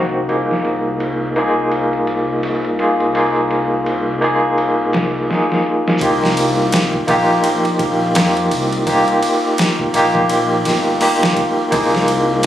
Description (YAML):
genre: trip hop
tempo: 84 BPM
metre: 4/4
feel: swing 59% on 16ths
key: unclear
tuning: A4 = 441 Hz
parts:
  - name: barky tine electric piano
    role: accompaniment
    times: 0.0-12.5 s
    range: Bb3 to Ab4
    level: -15 LUFS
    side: equal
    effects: overdrive, tremolo, vintage 12-bit sampler grit, tape echo
  - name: dark detuned saw bass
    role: bass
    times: 0.0-12.5 s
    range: G1 to F2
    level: -25 LUFS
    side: left 1 dB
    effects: none
  - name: boom bap sampler-style drum kit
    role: drums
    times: 0.3-12.5 s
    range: hi-hat, kick drum, ride cymbal, snare drum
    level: -22 LUFS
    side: equal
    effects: low-pass filter on cymbals, studio reverb, low-pass filter on snare, low-pass filter on hats, low-pass filter on kick
room: light reverb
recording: recorded on a phone in the room, studio reverb, compression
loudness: -14 LUFS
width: side -12 dB against mid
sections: 0.0-6.0 A section; 6.0-12.5 B section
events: drum fill 5.3-6.0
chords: 0.3 Ab69/C; 6.0 Ebadd9; 11.7 Bb9sus4